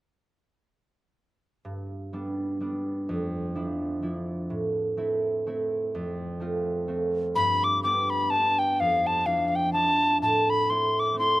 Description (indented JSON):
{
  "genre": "celtic folk",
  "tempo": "126 BPM",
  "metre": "3/4",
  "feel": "swing 58% on 8ths",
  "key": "G mixolydian",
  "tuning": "A4 = 439 Hz",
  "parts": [
    { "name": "concert harp", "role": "accompaniment", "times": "1.6-11.4 s", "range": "F2 to G4", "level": "-28 LUFS", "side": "right 2 dB", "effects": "slapback echo" },
    { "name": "wooden whistle", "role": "melody", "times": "7.4-11.4 s", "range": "F5 to D6", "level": "-22 LUFS", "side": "left 1 dB", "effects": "slapback echo" }
  ],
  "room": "little or no reverb",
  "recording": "recorded outdoors, with no room sound, lossy compression artefacts",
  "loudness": "-24 LUFS",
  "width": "side -17 dB against mid",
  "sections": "1.6-7.4 A section; 7.4-11.4 B section",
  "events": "none",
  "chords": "1.6 G; 3.1 Dmadd9/F; 4.5 Am; 5.9 F; 7.4 G; 8.8 Dmadd9/F; 10.2 Am",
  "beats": "| 1.64 2.12 2.60 | 3.08 3.56 4.03 | 4.51 4.99 5.46 | 5.94 6.41 6.89 | 7.36 7.84 8.31 | 8.79 9.27 9.74 | 10.22 10.70 11.17"
}